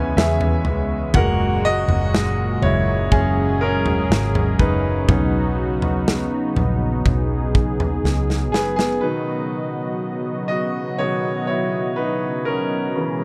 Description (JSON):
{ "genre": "pop ballad", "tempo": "61 BPM", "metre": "4/4", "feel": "straight", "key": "B major", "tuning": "A4 = 439 Hz", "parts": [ { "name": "bright concert grand piano", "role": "accompaniment", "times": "0.0-13.2 s", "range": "B2 to G#5", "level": "-25 LUFS", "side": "equal", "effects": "none" }, { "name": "warm analog pad", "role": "sustained chords", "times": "0.0-13.2 s", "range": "A#2 to D#5", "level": "-26 LUFS", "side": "equal", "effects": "chorus" }, { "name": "vintage muted fingered electric bass", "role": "bass", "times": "0.0-9.0 s", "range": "F#1 to E2", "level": "-25 LUFS", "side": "equal", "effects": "none" }, { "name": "modern studio drum kit", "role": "drums", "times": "0.2-9.0 s", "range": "kick drum, snare drum, toms", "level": "-24 LUFS", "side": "equal", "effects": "none" } ], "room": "light reverb", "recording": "dark, warm production", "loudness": "-20 LUFS", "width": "mono", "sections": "0.0-9.0 A section; 9.0-13.2 B section", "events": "grand piano solo 0.0-9.0, 9.0-13.2; drum fill 8.0-9.0", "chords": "0.0 C#m7; 1.1 F#add9; 5.1 Badd9" }